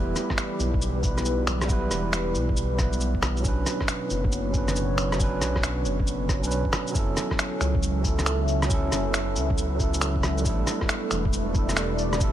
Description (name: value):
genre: future garage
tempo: 137 BPM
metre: 4/4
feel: swing 65% on 16ths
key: unclear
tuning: A4 = 440 Hz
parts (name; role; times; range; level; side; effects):
- overdriven tine electric piano; accompaniment; 0.0-12.3 s; F#3 to B4; -30 LUFS; right 4 dB; sidechain pumping, digital delay
- airy breathy pad; sustained chords; 0.0-12.3 s; B2 to E5; -32 LUFS; left 1 dB; chorus, vintage 12-bit sampler grit, sidechain pumping
- dark detuned saw bass; bass; 0.0-12.3 s; E1 to C#2; -27 LUFS; equal; sidechain pumping
- electronic rim click, cabasa, shaker and finger snaps; drums; 0.2-12.3 s; none; -29 LUFS; equal; studio reverb
- electronic kick drum; drums; 0.3-12.3 s; none; -27 LUFS; equal; studio reverb
- wind-like tuned noise texture; texture; 8.8-12.3 s; B3 to B4; -39 LUFS; left 1 dB; built-in reverb
room: light reverb, digital ambience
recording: lossy compression artefacts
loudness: -23 LUFS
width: side -11 dB against mid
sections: 0.0-6.9 A section; 6.9-12.3 A section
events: none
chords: 0.0 Em; 3.4 Bmadd9; 6.9 F#m7; 10.5 A7sus4